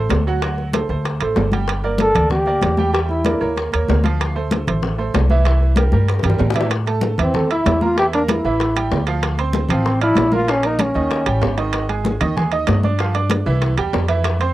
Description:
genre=latin, salsa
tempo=191 BPM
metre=4/4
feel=straight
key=unclear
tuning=A4 = 440 Hz
part: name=bright upright piano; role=accompaniment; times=0.0-14.5 s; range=Eb3 to F6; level=-23 LUFS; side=right 5 dB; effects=none
part: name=upright bass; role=bass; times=0.0-14.5 s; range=G1 to A2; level=-20 LUFS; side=equal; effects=none
part: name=bongos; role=percussion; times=0.1-14.4 s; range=none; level=-27 LUFS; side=left 6 dB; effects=none
part: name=congas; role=percussion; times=0.1-14.5 s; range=none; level=-23 LUFS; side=left 1 dB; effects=none
part: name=timbales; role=percussion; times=0.1-14.5 s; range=none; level=-26 LUFS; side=right 7 dB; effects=none
part: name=warm trombone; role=melody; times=2.0-3.5, 7.2-11.6 s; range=C4 to A4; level=-18 LUFS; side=equal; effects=cassette tape
room=moderate booth ambience, RT60 0.2 s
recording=home recording on cassette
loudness=-16 LUFS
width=side -15 dB against mid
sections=0.0-6.7 A section; 6.7-14.5 B section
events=drum fill 5.8-6.7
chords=0.4 D7; 1.7 Gmadd9; 2.9 Em7b5; 3.6 Eb5; 4.2 Dm7; 5.5 C7; 6.7 Am; 8.0 Gm69 (rootless); 8.6 A5; 9.2 Dm7; 10.5 Bbm; 11.1 Eb7; 11.7 Ab5; 13.0 G5; 13.6 C

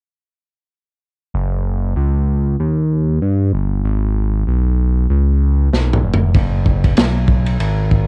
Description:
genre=hip hop, jazz-hop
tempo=96 BPM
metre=4/4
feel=swing 58% on 16ths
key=unclear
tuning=A4 = 440 Hz
part: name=smooth synth bass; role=bass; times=1.3-8.1 s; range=E#1 to G2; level=-17 LUFS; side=equal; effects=none
part: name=crunchy breakbeat drum kit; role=drums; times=5.7-8.1 s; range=hi-hat, kick drum, ride cymbal, snare drum, toms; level=-18 LUFS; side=equal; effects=cassette tape
room=little or no reverb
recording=home recording on cassette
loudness=-16 LUFS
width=mono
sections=1.3-8.1 A section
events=drum fill 5.7-6.3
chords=none

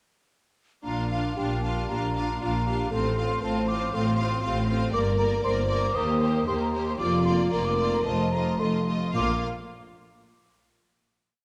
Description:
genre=quick classical-period movement for symphony orchestra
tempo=108-121 BPM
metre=4/4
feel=rubato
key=Bb major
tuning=A4 = 441 Hz
part: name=mellow hollow silver concert flute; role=second line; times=0.8-9.5 s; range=F5 to Eb6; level=-34 LUFS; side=equal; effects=none
part: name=rich chamber violin section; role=second line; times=0.8-9.4 s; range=F4 to Bb4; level=-38 LUFS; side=equal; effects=none
part: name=rich chamber viola section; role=accompaniment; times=0.8-9.4 s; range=A3 to D4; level=-36 LUFS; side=equal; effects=none
part: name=mellow French horn section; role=sustained chords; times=0.8-9.4 s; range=F3 to C5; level=-33 LUFS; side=equal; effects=none
part: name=rich chamber violin section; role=melody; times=0.9-9.4 s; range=C5 to F5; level=-38 LUFS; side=equal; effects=none
part: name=clear chamber double bass section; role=bass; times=0.9-9.4 s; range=F1 to Eb2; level=-32 LUFS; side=equal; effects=none
part: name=warm studio cello section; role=bass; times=0.9-9.4 s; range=Eb2 to Bb2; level=-33 LUFS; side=equal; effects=none
room=wet scoring stage reverb, RT60 1.8 s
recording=none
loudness=-26 LUFS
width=mono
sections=0.8-9.1 theme; 9.1-11.3 final chord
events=none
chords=0.8 Bb; 2.9 F/A; 4.9 Gm; 6.0 Cm7/Eb; 7.0 Bb/F; 8.1 F7; 9.1 Bb5

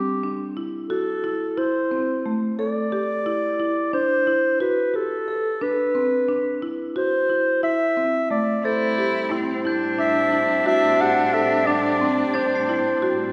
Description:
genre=contemporary instrumental, chamber music in an uneven meter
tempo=178 BPM (eighths)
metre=9/8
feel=straight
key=A dorian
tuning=A4 = 440 Hz
part: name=dark clarinet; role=melody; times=0.0-13.3 s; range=G4 to F#5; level=-24 LUFS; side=equal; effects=none
part: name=marimba with medium mallets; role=arpeggios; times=0.0-13.3 s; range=A3 to A4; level=-28 LUFS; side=equal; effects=none
part: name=warm cello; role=second line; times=8.6-13.3 s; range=C4 to E4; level=-28 LUFS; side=equal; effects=none
part: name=dark studio string section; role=sustained chords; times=8.6-13.3 s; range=A2 to C4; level=-32 LUFS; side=equal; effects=none
part: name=glockenspiel with hard plastic mallets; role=texture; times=8.7-13.3 s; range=G6 to C7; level=-35 LUFS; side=equal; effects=none
room=wet concert hall reverb, RT60 2.3 s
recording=recorded in a church or concert hall, nothing above 10.6 kHz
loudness=-22 LUFS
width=mono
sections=0.0-13.3 A section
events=none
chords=0.0 Am7

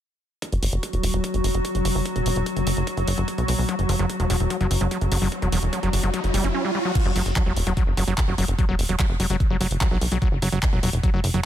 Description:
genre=psychedelic trance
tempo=147 BPM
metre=4/4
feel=straight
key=unclear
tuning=A4 = 441 Hz
part: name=evolving wavetable pad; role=sustained chords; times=0.4-6.5 s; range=F#3 to F#4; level=-28 LUFS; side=left 2 dB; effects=chorus, built-in reverb, sidechain pumping
part: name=drum and bass drum kit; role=drums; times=0.4-11.4 s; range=crash cymbal, handclaps, hi-hat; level=-30 LUFS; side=equal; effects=overdrive, studio reverb
part: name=electronic kick drum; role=drums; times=0.4-11.1 s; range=none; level=-24 LUFS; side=equal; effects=high-pass filter on kick, studio reverb, high-pass filter on room
part: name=plucky analog bass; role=bass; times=0.5-11.4 s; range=E1 to B1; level=-23 LUFS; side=equal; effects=tube saturation
part: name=overdriven acid bass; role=riff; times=3.7-11.4 s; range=F#3 to C#4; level=-27 LUFS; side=equal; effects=distortion, auto-pan, sidechain pumping, tape echo
part: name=riser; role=sound effects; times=5.0-7.0 s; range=none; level=-32 LUFS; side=right 3 dB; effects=none
room=digital ambience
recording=dense, heavily limited modern master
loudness=-20 LUFS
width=side -11 dB against mid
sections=0.4-7.0 A section; 7.0-11.5 B section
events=riser 5.0-7.0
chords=0.4 F#5

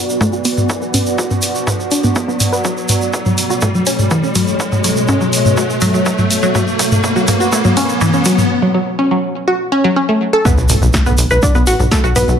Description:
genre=melodic techno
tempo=123 BPM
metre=4/4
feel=straight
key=B minor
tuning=A4 = 438 Hz
part: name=deep dark ambient pad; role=sustained chords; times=0.0-12.4 s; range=B2 to D5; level=-20 LUFS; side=equal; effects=chorus, built-in reverb, sidechain pumping
part: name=riser and impact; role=sound effects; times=0.0-12.4 s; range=none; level=-21 LUFS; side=left 1 dB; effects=none
part: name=tube shaker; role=percussion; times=0.1-12.4 s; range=none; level=-23 LUFS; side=right 3 dB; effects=none
part: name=wide unison pluck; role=arpeggios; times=0.2-12.3 s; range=E3 to B5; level=-16 LUFS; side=equal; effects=sidechain pumping, tape echo
part: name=electronic kick drum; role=drums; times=0.2-12.0 s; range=none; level=-19 LUFS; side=equal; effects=high-pass filter on kick
part: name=house drum kit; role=drums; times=0.2-12.3 s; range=hi-hat, snare drum, toms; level=-18 LUFS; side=equal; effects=none
part: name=plucky analog bass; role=bass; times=10.6-12.4 s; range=A1 to B1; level=-15 LUFS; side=equal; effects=sidechain pumping
room=moderate digital room reverb, RT60 1.2 s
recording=none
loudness=-12 LUFS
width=side -8 dB against mid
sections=0.0-10.5 A section; 10.5-12.4 B section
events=build-up 0.0-10.5; riser 0.0-8.5; filter sweep on synth pluck 0.0-10.5; drum fill 2.6-8.5; drop 10.5-12.4; impact 10.5-12.4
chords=0.0 Bm; 2.6 F#m/B; 10.5 Bm

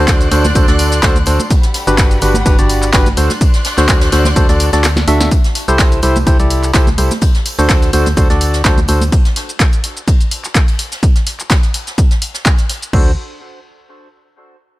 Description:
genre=piano house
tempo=126 BPM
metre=4/4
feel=swing 54% on 16ths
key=D mixolydian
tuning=A4 = 441 Hz
part: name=warm studio violin section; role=sustained chords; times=0.0-5.3 s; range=G3 to F#6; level=-23 LUFS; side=left 1 dB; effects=sidechain pumping
part: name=percussive organ stab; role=riff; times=0.0-9.0, 12.9-13.1 s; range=D4 to E5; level=-16 LUFS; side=equal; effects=chorus, sidechain pumping, dub echo
part: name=organ-like FM bass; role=bass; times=0.0-9.1, 12.9-13.2 s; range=G1 to D2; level=-15 LUFS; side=equal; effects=sidechain pumping
part: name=electronic kick drum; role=drums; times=0.1-13.0 s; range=none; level=-12 LUFS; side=equal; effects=none
part: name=jazz brush drum kit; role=drums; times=0.1-12.8 s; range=hi-hat, ride cymbal, snare drum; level=-27 LUFS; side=equal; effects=sidechain pumping on cymbals, high-pass filter on cymbals, sidechain pumping on hats, high-pass filter on hats, high-pass filter on snare, high-pass filter on room
part: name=punchy analog drum machine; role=drums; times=0.1-13.0 s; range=crash cymbal, handclaps, hi-hat, shaker, snare drum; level=-19 LUFS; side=equal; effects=none
part: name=tambourine and congas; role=percussion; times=0.1-9.1 s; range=none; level=-25 LUFS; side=right 1 dB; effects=none
room=studio reverb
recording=none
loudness=-10 LUFS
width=side -17 dB against mid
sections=0.0-5.3 A section; 5.3-12.9 B section; 12.9-14.8 C section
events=drop 0.0-5.3; kick drops out 4.8-5.3; drum fill 4.8-5.3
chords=0.0 D7; 1.5 Gmaj7; 3.2 D7; 5.3 C6; 7.2 D7; 9.1 N.C.; 12.9 D7

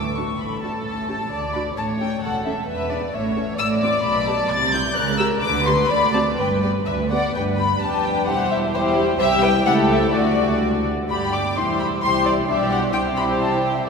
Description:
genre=quick classical-period movement for string orchestra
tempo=130 BPM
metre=2/4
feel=rubato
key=G major from 3.6 s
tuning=A4 = 440 Hz
part: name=warm symphonic violin section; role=melody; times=0.0-13.9 s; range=C5 to A6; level=-23 LUFS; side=left 3 dB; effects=none
part: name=warm symphonic cello section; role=bass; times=0.0-13.9 s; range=C2 to D3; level=-28 LUFS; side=right 2 dB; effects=none
part: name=warm symphonic double bass section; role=bass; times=0.0-13.9 s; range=E1 to D2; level=-28 LUFS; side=right 3 dB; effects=none
part: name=dark symphonic viola section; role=accompaniment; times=0.2-13.9 s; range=G3 to A4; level=-26 LUFS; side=equal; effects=none
part: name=warm symphonic violin section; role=second line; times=0.4-13.9 s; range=F#4 to D5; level=-23 LUFS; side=left 2 dB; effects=none
room=wet cathedral reverb, RT60 4.5 s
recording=recorded in a church or concert hall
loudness=-18 LUFS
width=side -5 dB against mid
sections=0.0-7.3 A section; 7.3-13.9 B section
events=none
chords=0.0 D; 0.9 A7; 1.3 D; 1.8 A; 2.7 E7; 3.1 A; 3.6 D7/A; 4.0 G/B; 4.5 C; 5.0 C#dim7(no3); 5.4 G/D; 5.9 D7; 6.4 G; 7.8 G7/F; 8.3 C/E; 9.2 C; 9.7 A7/C#; 10.1 D; 11.1 G; 11.6 C/E; 12.0 C; 12.5 G/B; 12.9 C

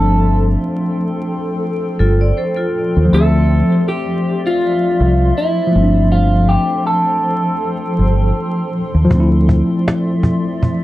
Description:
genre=lo-fi hip hop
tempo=80 BPM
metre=4/4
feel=swing 56% on 16ths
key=unclear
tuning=A4 = 441 Hz
part: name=electric guitar through a small old amp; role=melody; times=0.0-8.7 s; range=E4 to A4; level=-19 LUFS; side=equal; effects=phaser, low-pass filter, analog delay
part: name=mellow tine electric piano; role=accompaniment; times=0.0-10.8 s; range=F3 to E5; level=-18 LUFS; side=left 1 dB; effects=medium stereo tremolo, cassette tape, low-pass filter
part: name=granular cloud pad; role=sustained chords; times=0.0-10.8 s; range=F3 to C6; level=-22 LUFS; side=equal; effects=built-in reverb, low-pass filter
part: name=deep dub fingered electric bass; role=bass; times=0.0-9.6 s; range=G1 to Eb2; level=-13 LUFS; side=equal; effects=none
part: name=vibraphone with medium hard mallets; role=second line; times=2.0-3.1 s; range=F4 to D5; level=-21 LUFS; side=equal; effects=low-pass filter, analog delay
part: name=cajon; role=drums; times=9.1-10.8 s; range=none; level=-16 LUFS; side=equal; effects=vintage 12-bit sampler grit
room=light reverb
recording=dark, warm production, vinyl crackle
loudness=-13 LUFS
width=side -16 dB against mid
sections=0.0-10.8 A section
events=none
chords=0.0 G9sus4; 3.1 Dm9; 5.7 G9sus4; 9.1 Dm9

